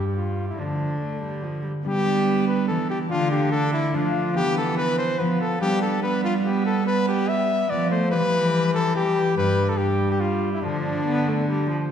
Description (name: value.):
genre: classical, renaissance-style consort dance.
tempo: 143 BPM.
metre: 3/4.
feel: straight.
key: unclear.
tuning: A4 = 441 Hz.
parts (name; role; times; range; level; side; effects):
warm cornet; melody; 0.0-11.7 s; D4 to E5; -25 LUFS; left 2 dB; none.
concert harp; accompaniment; 0.0-11.9 s; G2 to F4; -29 LUFS; left 4 dB; none.
warm viola; accompaniment; 0.0-11.9 s; F3 to D4; -28 LUFS; right 1 dB; none.
rich cello; bass; 0.0-11.7 s; G2 to G3; -25 LUFS; right 3 dB; none.
room: wet recital hall reverb, RT60 1.6 s.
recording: heard from further back in the room.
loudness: -20 LUFS.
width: side -8 dB against mid.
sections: 0.0-1.9 A section; 1.9-11.9 A section.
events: none.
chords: 0.0 G; 0.6 Dm; 1.9 G; 3.1 Dm; 4.4 Em; 5.6 G; 8.1 Em; 9.4 G; 10.6 Dm.